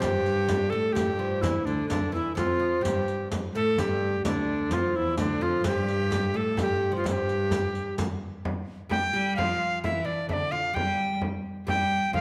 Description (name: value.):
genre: medieval dance.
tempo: 129 BPM.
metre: 3/4.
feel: straight.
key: unclear.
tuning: A4 = 441 Hz.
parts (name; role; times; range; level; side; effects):
bright reedy tenor recorder; melody; 0.0-12.2 s; D4 to G5; -30 LUFS; equal; none.
oud; second line; 0.0-12.2 s; D3 to G4; -36 LUFS; equal; none.
warm viola da gamba; second line; 0.0-12.2 s; D2 to G3; -34 LUFS; equal; none.
frame drum; percussion; 0.0-12.2 s; none; -35 LUFS; equal; none.
riq; percussion; 0.0-8.2 s; none; -40 LUFS; equal; none.
room: wet recital hall reverb, RT60 1.5 s.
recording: dark, warm production.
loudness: -27 LUFS.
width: mono.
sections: 0.0-8.4 A section; 8.4-12.2 B section.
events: none.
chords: none.